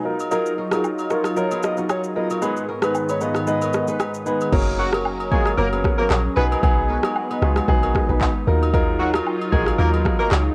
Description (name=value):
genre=afrobeats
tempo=114 BPM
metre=4/4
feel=swing 55% on 16ths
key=unclear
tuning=A4 = 440 Hz
part: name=warm baby grand piano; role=accompaniment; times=0.0-10.4 s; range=F#3 to B4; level=-26 LUFS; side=equal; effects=cassette tape
part: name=lush unison pad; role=sustained chords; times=0.0-10.5 s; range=G#2 to A#4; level=-30 LUFS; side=equal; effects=chorus, phaser, sidechain pumping, cassette tape
part: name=afro-pop drum kit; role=drums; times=0.2-10.4 s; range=crash cymbal, handclaps, kick drum, rim click, shaker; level=-25 LUFS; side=equal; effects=none
part: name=agogo bells and woodblock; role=percussion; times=0.2-10.5 s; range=none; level=-34 LUFS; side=equal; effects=none
part: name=breathy flute-like synth lead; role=melody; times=0.3-3.9 s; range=G#4 to D#5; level=-30 LUFS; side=equal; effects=chorus, tape echo
part: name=kora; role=riff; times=0.3-10.5 s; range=B3 to C#5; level=-33 LUFS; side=equal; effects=cassette tape, tape echo
part: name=deep log drum bass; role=bass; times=4.5-10.5 s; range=F#1 to D#2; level=-24 LUFS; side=equal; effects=none
part: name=mellow horn section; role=second line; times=4.8-10.3 s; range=F#3 to B4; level=-28 LUFS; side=equal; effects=cassette tape, tape echo
room=light reverb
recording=home recording on cassette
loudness=-21 LUFS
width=mono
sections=0.0-4.5 A section; 4.5-10.5 B section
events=kick muted 3.5-4.5; hi-hats muted 4.5-10.5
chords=0.1 D#madd9; 2.4 G#m; 4.5 F#; 6.4 B6; 8.5 D#madd9